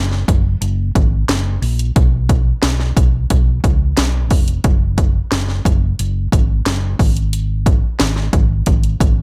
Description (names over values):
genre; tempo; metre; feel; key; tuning
piano-driven pop; 89 BPM; 4/4; straight; F# major; A4 = 440 Hz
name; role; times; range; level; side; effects
hollow-body short-scale fingered electric bass; bass; 0.0-9.2 s; E#1 to C#2; -20 LUFS; equal; none
house drum kit; drums; 0.1-9.2 s; hi-hat, kick drum, snare drum; -17 LUFS; equal; none
room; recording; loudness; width
little or no reverb; none; -16 LUFS; mono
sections
0.0-9.2 A section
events
none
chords
none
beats
0.62 1.29 | 1.96 2.63 3.30 3.97 | 4.64 5.31 5.99 6.66 | 7.33 8.00 8.67